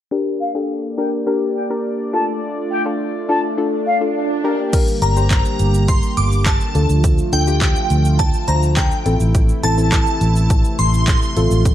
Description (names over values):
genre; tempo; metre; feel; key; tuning
dance-pop; 104 BPM; 4/4; straight; unclear; A4 = 440 Hz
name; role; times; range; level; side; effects
soft round pluck; accompaniment; 0.1-11.7 s; C4 to C5; -22 LUFS; left 3 dB; chorus, low-pass filter
warm analog pad; sustained chords; 0.1-11.7 s; C3 to D5; -24 LUFS; right 1 dB; chorus, sidechain pumping, low-pass filter
swell; sound effects; 3.1-4.7 s; none; -26 LUFS; right 5 dB; none
mellow concert flute; melody; 0.4-4.0 s; F5 to A5; -22 LUFS; left 2 dB; low-pass filter, ping-pong delay
punchy analog drum machine; drums; 4.7-11.7 s; crash cymbal, handclaps, hi-hat, kick drum, shaker; -17 LUFS; equal; none
shimmering bell with halo; melody; 5.0-11.6 s; G5 to D6; -22 LUFS; equal; ensemble chorus, phaser, ping-pong delay
vintage muted fingered electric bass; bass; 5.0-11.7 s; G1 to D2; -16 LUFS; equal; sidechain pumping
room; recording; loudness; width
light reverb, digital ambience; dark, warm production; -15 LUFS; side -11 dB against mid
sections
0.1-4.7 A section; 4.7-11.7 B section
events
filter sweep 0.1-4.7; swell 3.1-4.7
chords
0.1 Gm; 2.1 Dm; 4.4 Gm; 6.8 Dm; 9.1 Am